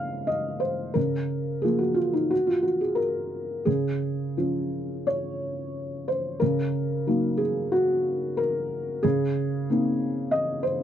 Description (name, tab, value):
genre	neoclassical minimalist piano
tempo	89 BPM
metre	4/4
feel	uneven beats, rubato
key	Db major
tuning	A4 = 440 Hz
part	felt-muted upright piano	solo	0.0-10.8 s	Db3 to F5	-24 LUFS	equal	none
room	light reverb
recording	dry, close 1970s-style studio recording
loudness	-24 LUFS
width	side -10 dB against mid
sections	0.0-10.8 A section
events	none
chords	0.0 Abadd9/Db; 1.0 Bbm/Db; 3.7 Db; 6.4 Ebm/Db; 9.0 Abadd9/Db